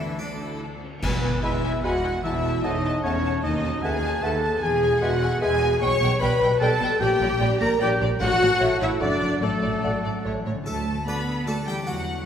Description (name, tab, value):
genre	cinematic, playful, whimsical film cue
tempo	150 BPM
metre	3/4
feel	straight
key	E major, D major from 5.8 s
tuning	A4 = 437 Hz
part	harpsichord	melody	0.0-0.6, 10.7-12.2 s	D4 to B4	-34 LUFS	equal	none
part	rich studio violin section	melody	0.0-12.2 s	A4 to B5	-35 LUFS	left 3 dB	none
part	rich studio violin section	second line	0.0-12.2 s	A4 to C#6	-32 LUFS	equal	none
part	clear studio viola section	accompaniment	0.0-11.5 s	A3 to C#5	-31 LUFS	equal	none
part	dark French horn section	sustained chords	0.0-11.6 s	D3 to C#5	-25 LUFS	left 2 dB	none
part	concert harp	arpeggios	0.0-12.3 s	F#2 to A5	-32 LUFS	left 3 dB	none
part	clear studio double bass section	bass	0.0-12.2 s	E1 to E2	-30 LUFS	right 2 dB	none
part	rich studio cello section	bass	0.0-12.3 s	D#2 to B3	-32 LUFS	right 2 dB	none
part	warm oboe	second line	1.0-11.6 s	A4 to C#6	-30 LUFS	right 1 dB	none
part	clash cymbals and concert bass drum	percussion	1.0-1.8 s	none	-33 LUFS	equal	none
part	concert flute	second line	1.4-11.5 s	E5 to B5	-38 LUFS	left 1 dB	none
part	dark clarinet	second line	1.4-11.6 s	F#4 to D5	-37 LUFS	left 1 dB	none
part	mellow bassoon	accompaniment	1.4-11.6 s	D3 to A3	-35 LUFS	right 1 dB	none
room	wet concert hall reverb, RT60 2.4 s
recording	recorded in a church or concert hall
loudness	-21 LUFS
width	side -8 dB against mid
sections	0.0-1.0 A section; 1.0-10.7 B section; 10.7-12.3 A section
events	band accent 1.0-1.4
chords	0.0 D; 1.0 E; 2.2 F#m7/E; 3.4 B7/D#; 4.6 E; 5.8 G/B; 7.0 Gm/Bb; 8.2 A; 9.0 D/F#; 9.4 D/A; 10.3 A; 10.7 D